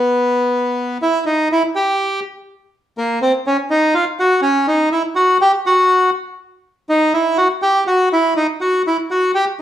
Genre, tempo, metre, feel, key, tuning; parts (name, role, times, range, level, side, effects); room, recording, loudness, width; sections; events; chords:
tango; 123 BPM; 4/4; rubato; A4 = 440 Hz
bandoneon; solo; 0.0-9.4 s; A#3 to G4; -14 LUFS; equal
wet large studio reverb, RT60 0.9 s; heard from further back in the room; -14 LUFS; side -11 dB against mid
0.0-9.6 A section